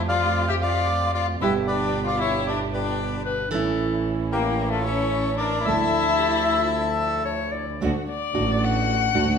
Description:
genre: tango.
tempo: 113 BPM.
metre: 4/4.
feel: rubato.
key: D harmonic minor.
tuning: A4 = 442 Hz.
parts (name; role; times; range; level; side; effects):
nylon-string guitar; accompaniment; 0.0-9.2 s; B2 to G4; -28 LUFS; right 5 dB; none.
muted symphonic string section; stabs; 0.0-9.4 s; E3 to G4; -33 LUFS; right 2 dB; none.
clear double bass; bass; 0.0-9.4 s; G1 to F2; -28 LUFS; right 2 dB; none.
bandoneon; melody; 0.1-7.2 s; F4 to G5; -25 LUFS; left 2 dB; none.
dark violin; second line; 0.1-9.4 s; A3 to F#5; -26 LUFS; left 7 dB; none.
bright clarinet; second line; 3.3-7.8 s; F4 to D5; -30 LUFS; left 4 dB; none.
room: wet recital hall reverb, RT60 1.3 s.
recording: recorded in a church or concert hall.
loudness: -21 LUFS.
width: side -6 dB against mid.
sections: 0.0-7.8 A section; 7.8-9.4 B section.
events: violin solo 7.8-9.4.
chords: 0.0 Fadd9; 1.4 G; 3.5 A; 5.7 Dmadd9; 7.8 D.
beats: 0.35 0.88 | 1.41 1.94 2.47 2.99 | 3.52 4.06 4.59 5.12 | 5.66 6.19 6.73 7.27 | 7.81 8.35 8.88.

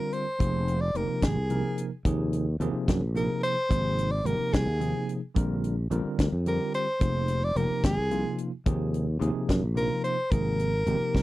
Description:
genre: electric jazz fusion.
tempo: 73 BPM (dotted quarters).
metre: 6/8.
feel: straight.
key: unclear.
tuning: A4 = 440 Hz.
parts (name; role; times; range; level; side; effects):
clear soprano saxophone; melody; 0.0-11.2 s; Ab4 to D5; -29 LUFS; equal; slapback echo.
bell-like tine electric piano; accompaniment; 0.0-11.2 s; C3 to Bb4; -31 LUFS; right 1 dB; medium stereo tremolo.
tight funk drum kit; drums; 0.1-11.2 s; hi-hat, kick drum, snare drum; -26 LUFS; equal; none.
sustaining fretless electric bass; bass; 0.4-11.2 s; F1 to Gb2; -28 LUFS; equal; none.
room: little or no reverb.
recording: dry, close 1970s-style studio recording.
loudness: -25 LUFS.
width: side -17 dB against mid.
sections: 0.0-11.2 A section.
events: none.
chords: 0.4 Fm9; 2.1 Eb5; 3.7 Abmaj9; 5.4 Bb69; 7.0 Fm9; 8.7 Eb5; 10.3 Abmaj9.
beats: | 0.41 1.23 | 2.06 2.88 | 3.71 4.53 | 5.36 6.18 | 7.01 7.83 | 8.66 9.49 | 10.31 11.14.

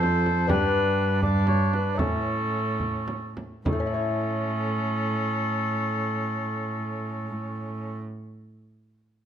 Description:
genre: classical, renaissance-style consort dance.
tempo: 67-86 BPM (dotted quarters).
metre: 6/8.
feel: straight.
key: A mixolydian.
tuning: A4 = 439 Hz.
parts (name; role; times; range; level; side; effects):
warm oboe; melody; 0.0-8.0 s; A4 to D5; -30 LUFS; left 6 dB; none.
mellow cor anglais; second line; 0.0-8.0 s; C#4 to A4; -31 LUFS; right 6 dB; none.
lute; accompaniment; 0.0-8.5 s; F2 to C#5; -33 LUFS; left 5 dB; none.
warm cello; bass; 0.0-8.0 s; F2 to A2; -28 LUFS; right 1 dB; none.
frame drum; percussion; 0.0-3.9 s; none; -30 LUFS; right 1 dB; none.
room: moderate stone room reverb, RT60 1.3 s.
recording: none.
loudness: -24 LUFS.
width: side -9 dB against mid.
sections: 0.0-3.7 A section; 3.7-7.2 B section.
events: slowing down 0.0-3.7.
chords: 0.0 F; 0.5 G; 2.0 A.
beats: | 0.51 1.24 | 2.00 2.80 | 3.67 4.56 | 5.45 6.34.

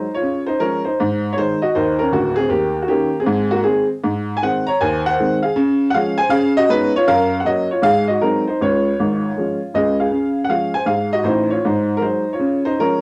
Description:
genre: jazz, stride piano.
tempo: 158 BPM.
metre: 4/4.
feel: swing 64% on 8ths.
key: Db major.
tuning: A4 = 440 Hz.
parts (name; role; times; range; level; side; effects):
clear upright piano; solo; 0.0-13.0 s; D1 to Bb5; -18 LUFS; equal; cassette tape.
room: wet studio reverb, RT60 0.5 s.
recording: home recording on cassette.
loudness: -18 LUFS.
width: mono.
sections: 0.0-10.1 A section; 10.1-13.0 A section.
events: none.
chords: 0.2 Db; 1.0 Ab; 2.5 Eb5; 3.3 Ab; 4.8 Ab7/Eb; 5.6 Db; 6.3 Db7; 7.1 Gb; 7.8 Ab7; 8.6 Db; 11.7 Ab5; 12.4 Db.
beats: 0.22 0.60 | 0.98 1.36 1.74 2.12 | 2.50 2.88 3.27 3.65 | 4.03 4.41 4.79 5.17 | 5.55 5.93 6.31 6.70 | 7.08 7.46 7.84 8.22 | 8.60 8.98 9.36 9.74 | 10.13 10.51 10.89 11.27 | 11.65 12.03 12.41 12.79.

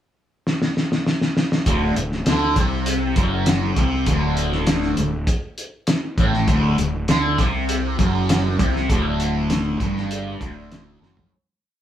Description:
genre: psychedelic rock.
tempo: 100 BPM.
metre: 4/4.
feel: straight.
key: D mixolydian.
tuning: A4 = 440 Hz.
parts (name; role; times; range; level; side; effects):
cloth-damped thuddy drum kit; drums; 0.5-11.3 s; hi-hat, kick drum, snare drum, toms; -21 LUFS; equal; none.
fuzz guitar; riff; 1.7-11.3 s; D2 to D3; -21 LUFS; equal; distortion, phaser.
fuzz fingered electric bass; bass; 1.7-11.3 s; D1 to D2; -25 LUFS; equal; overdrive.
room: moderate studio reverb, RT60 0.7 s.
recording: band playing live in one room.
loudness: -18 LUFS.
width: side -10 dB against mid.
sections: 0.0-1.7 pickup bar; 1.7-11.3 riff.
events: drum fill 0.5-1.7, 11.0-11.3; fade-out 8.9-11.3.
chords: 0.0 N.C.; 1.7 D.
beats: 0.46 1.06 | 1.66 2.27 2.87 3.47 | 4.07 4.68 5.28 5.88 | 6.49 7.09 7.70 8.30 | 8.90 9.51 10.11 10.71.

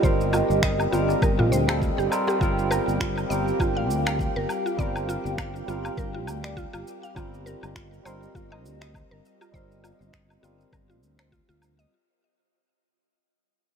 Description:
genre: organic downtempo.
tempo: 101 BPM.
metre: 4/4.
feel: swing 56% on 16ths.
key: unclear.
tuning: A4 = 438 Hz.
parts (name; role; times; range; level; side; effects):
barky tine electric piano; accompaniment; 0.0-11.9 s; G3 to Bb4; -30 LUFS; equal; overdrive, lush chorus, sidechain pumping, low-pass filter, ping-pong delay, shimmer reverb.
warbly tape-like pad; sustained chords; 0.0-11.9 s; G4 to G5; -30 LUFS; right 2 dB; chorus, built-in reverb, sidechain pumping, shimmer reverb.
mallet-like synth pluck; arpeggios; 0.0-11.9 s; F4 to F5; -31 LUFS; right 1 dB; chorus, ping-pong delay, shimmer reverb.
sustaining fretless electric bass; bass; 0.0-11.8 s; G1 to D2; -29 LUFS; equal; ensemble chorus.
electronic kick drum; drums; 0.0-11.5 s; none; -27 LUFS; equal; none.
electronic shaker, woodblock and finger snaps; drums; 0.0-11.9 s; none; -32 LUFS; left 1 dB; none.
darbuka; percussion; 0.3-2.4 s; none; -30 LUFS; equal; none.
room: light reverb.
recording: none.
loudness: -22 LUFS.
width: side -7 dB against mid.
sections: 0.0-11.9 A section.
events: fade-out 0.0-11.9; filter sweep on tine electric piano 0.0-11.9.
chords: 0.0 F9sus4/G; 2.4 Gm7; 7.2 F9sus4/G.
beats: | 0.03 0.63 1.22 1.81 | 2.41 3.00 3.60 4.19 | 4.78 5.38 5.97 6.57 | 7.16 7.75 8.35 8.94 | 9.54 10.13 10.72 11.32.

